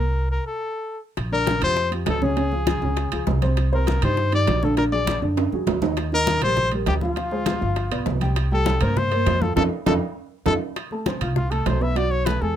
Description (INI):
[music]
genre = Afro-Cuban jazz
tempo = 200 BPM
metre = 4/4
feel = straight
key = Bb major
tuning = A4 = 440 Hz
[part]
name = breathy trumpet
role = melody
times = 0.0-12.6 s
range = F4 to E5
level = -24 LUFS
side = left 3 dB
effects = none
[part]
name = upright bass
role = bass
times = 0.0-12.6 s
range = G1 to G2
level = -24 LUFS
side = equal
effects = none
[part]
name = bongos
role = percussion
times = 1.2-12.6 s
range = none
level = -30 LUFS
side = left 10 dB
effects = none
[part]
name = congas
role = percussion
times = 1.2-12.4 s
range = none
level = -29 LUFS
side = left 1 dB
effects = none
[part]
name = timbales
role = percussion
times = 1.2-12.4 s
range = none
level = -30 LUFS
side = right 9 dB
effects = none
[part]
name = dark upright piano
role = accompaniment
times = 1.3-12.6 s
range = C3 to F6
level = -26 LUFS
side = right 1 dB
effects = none
[sound]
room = light reverb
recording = minimal, uncompressed stereo recording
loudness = -20 LUFS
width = side -10 dB against mid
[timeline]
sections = 0.0-1.2 A section; 1.2-10.8 B section; 10.8-12.6 C section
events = stop 0.0-1.2; drum fill 5.4-6.0, 10.2-10.8; band accent 9.6-10.8; trumpet solo 10.8-12.6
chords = 0.0 Bbsus2/C; 0.6 N.C.; 1.2 Bb69; 2.4 Db; 3.6 Cm9; 4.8 Bbaug7; 6.0 Ebmaj9; 7.2 Dm7b5; 7.8 G7; 8.4 C5; 9.6 F7; 10.8 F; 12.0 B5